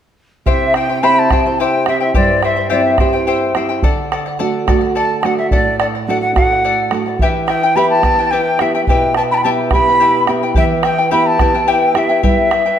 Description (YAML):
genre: andean folk, Andean ensemble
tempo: 71 BPM (dotted quarters)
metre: 6/8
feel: straight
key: unclear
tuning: A4 = 440 Hz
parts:
  - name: large quena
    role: melody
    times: 0.5-12.8 s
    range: D5 to B5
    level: -16 LUFS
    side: equal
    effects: none
  - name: charango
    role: accompaniment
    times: 0.5-12.8 s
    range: E4 to G5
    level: -17 LUFS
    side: left 4 dB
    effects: none
  - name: nylon-string guitar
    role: accompaniment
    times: 0.5-12.8 s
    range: G2 to G4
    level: -20 LUFS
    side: right 5 dB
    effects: none
  - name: bombo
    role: percussion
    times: 0.5-12.6 s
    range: none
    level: -18 LUFS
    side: right 1 dB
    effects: none
room: wet recital hall reverb, RT60 1.4 s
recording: none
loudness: -12 LUFS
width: side -9 dB against mid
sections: 0.5-12.8 A section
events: none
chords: 0.5 C; 3.8 D; 7.2 Em